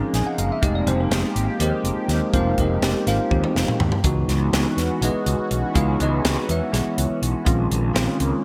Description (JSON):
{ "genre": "electric jazz fusion", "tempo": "246 BPM (eighths)", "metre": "7/8", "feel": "straight", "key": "unclear", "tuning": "A4 = 439 Hz", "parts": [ { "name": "bell-like tine electric piano", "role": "accompaniment", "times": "0.0-8.4 s", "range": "Eb3 to Ab5", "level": "-26 LUFS", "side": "equal", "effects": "analog chorus" }, { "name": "phased analog pad", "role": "sustained chords", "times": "0.0-8.4 s", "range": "Db3 to G4", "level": "-32 LUFS", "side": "equal", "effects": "phaser, chorus" }, { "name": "fretless electric bass", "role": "bass", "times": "0.0-8.3 s", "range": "F1 to Fb2", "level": "-25 LUFS", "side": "equal", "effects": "none" }, { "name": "crisp fusion drum kit", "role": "drums", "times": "0.1-8.3 s", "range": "hi-hat, kick drum, snare drum, toms", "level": "-27 LUFS", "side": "equal", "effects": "gated reverb" } ], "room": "light reverb", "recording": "bright 1980s-style digital production", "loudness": "-21 LUFS", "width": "mono", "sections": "0.0-8.4 A section", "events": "drum fill 3.3-4.0", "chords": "0.0 Bbm11; 0.6 Fm11; 4.0 Dbm11; 7.5 Bbm11", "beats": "0.14 0.39 | 0.63 0.87 1.12 1.36 1.60 1.85 2.09 | 2.34 2.58 2.83 3.07 3.31 3.56 3.80 | 4.04 4.29 4.53 4.78 5.02 5.26 5.51 | 5.75 6.00 6.24 6.49 6.73 6.97 7.22 | 7.46 7.71 7.95 8.20 8.44" }